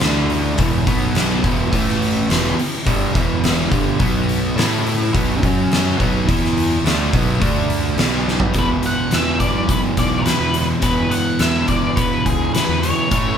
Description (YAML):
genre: blues rock power trio and southern rock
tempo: 105 BPM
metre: 4/4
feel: straight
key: unclear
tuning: A4 = 440 Hz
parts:
  - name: fuzz guitar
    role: riff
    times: 0.0-13.4 s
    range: E2 to A4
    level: -20 LUFS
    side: right 1 dB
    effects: distortion
  - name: fuzz fingered electric bass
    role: bass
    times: 0.0-13.3 s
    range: E1 to E3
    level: -23 LUFS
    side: equal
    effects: overdrive
  - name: oversized low-tuned drum kit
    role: drums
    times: 0.0-13.2 s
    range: hi-hat, kick drum, snare drum, toms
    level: -19 LUFS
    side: equal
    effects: none
  - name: octave-fuzz lead guitar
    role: melody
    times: 8.6-13.4 s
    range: G#4 to F#5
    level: -22 LUFS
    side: left 2 dB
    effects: distortion
room: light reverb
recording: band playing live in one room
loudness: -15 LUFS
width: side -8 dB against mid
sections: 0.0-8.6 A section; 8.6-13.4 B section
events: drum fill 8.3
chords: 0.0 D5; 0.6 E5; 0.9 B5; 1.4 E5; 1.7 A5; 2.3 E5; 4.0 B5; 4.6 A5; 5.1 B5; 5.4 F#5; 6.0 B5; 6.3 E5; 6.8 B5; 7.4 D5; 8.0 B5; 8.6 E5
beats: 0.02 0.59 1.16 | 1.73 2.29 2.86 3.43 | 4.00 4.57 5.14 5.71 | 6.27 6.84 7.41 7.98 | 8.55 9.12 9.69 10.26 | 10.83 11.40 11.98 12.55 | 13.12